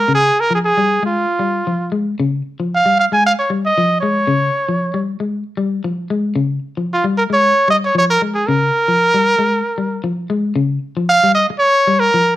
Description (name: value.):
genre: afrobeat.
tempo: 114 BPM.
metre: 4/4.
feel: swing 55% on 16ths.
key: unclear.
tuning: A4 = 439 Hz.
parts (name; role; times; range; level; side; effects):
clear trumpet; melody; 0.0-12.4 s; F4 to Ab5; -13 LUFS; right 1 dB; none.
electric guitar at the edge of break-up; arpeggios; 0.0-12.4 s; Db3 to Ab3; -19 LUFS; left 3 dB; none.
room: moderate studio reverb, RT60 0.8 s.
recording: none.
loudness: -14 LUFS.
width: side -14 dB against mid.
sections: 0.0-10.6 A section; 10.6-12.4 B section.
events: none.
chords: 0.0 Db.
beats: | 0.10 0.62 1.15 1.67 | 2.19 2.72 3.24 3.77 | 4.29 4.82 5.34 5.86 | 6.39 6.91 7.44 7.96 | 8.48 9.01 9.53 10.05 | 10.58 11.10 11.62 12.14.